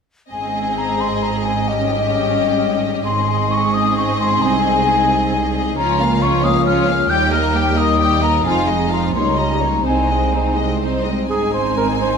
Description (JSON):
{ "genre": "classical, dramatic, fast romantic movement for symphony orchestra", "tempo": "88 BPM (dotted quarters)", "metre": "6/8", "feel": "rubato", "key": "Ab major", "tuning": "A4 = 440 Hz", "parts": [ { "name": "rich studio violin section", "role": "melody", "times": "0.3-12.2 s", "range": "C5 to Ab5", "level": "-26 LUFS", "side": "left 5 dB", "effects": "none" }, { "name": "concert flute", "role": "second line", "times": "0.3-10.6 s", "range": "Eb5 to G6", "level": "-19 LUFS", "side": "left 4 dB", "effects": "none" }, { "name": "rich studio violin section", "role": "second line", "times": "0.3-12.2 s", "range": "C4 to Bb4", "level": "-25 LUFS", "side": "left 3 dB", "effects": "none" }, { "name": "rich symphonic viola section", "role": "accompaniment", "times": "0.3-12.2 s", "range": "F3 to Db4", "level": "-25 LUFS", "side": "right 3 dB", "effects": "none" }, { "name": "warm French horn section", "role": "sustained chords", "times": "0.3-11.1 s", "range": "F3 to F4", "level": "-23 LUFS", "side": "left 3 dB", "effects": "none" }, { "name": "clear symphonic cello section", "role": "bass", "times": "0.3-12.2 s", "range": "C2 to Ab2", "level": "-23 LUFS", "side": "right 5 dB", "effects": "none" }, { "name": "rich symphonic double bass section", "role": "bass", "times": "0.3-12.2 s", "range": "F1 to Eb2", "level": "-24 LUFS", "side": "right 4 dB", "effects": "none" }, { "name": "mellow cor anglais", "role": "second line", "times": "11.3-12.2 s", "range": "Ab4 to C5", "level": "-18 LUFS", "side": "right 3 dB", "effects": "none" } ], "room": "moderate scoring stage reverb, RT60 1.9 s", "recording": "minimal, uncompressed stereo recording", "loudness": "-15 LUFS", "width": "side -6 dB against mid", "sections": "0.3-11.3 A section", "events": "none", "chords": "0.3 Ab; 1.7 Eb7/Ab; 3.1 Ab; 4.4 Ab/C; 5.8 Bbm/Db; 7.1 Eb; 8.4 Fm7; 9.1 Eb7/Db; 9.9 Ab/C; 11.3 Ab" }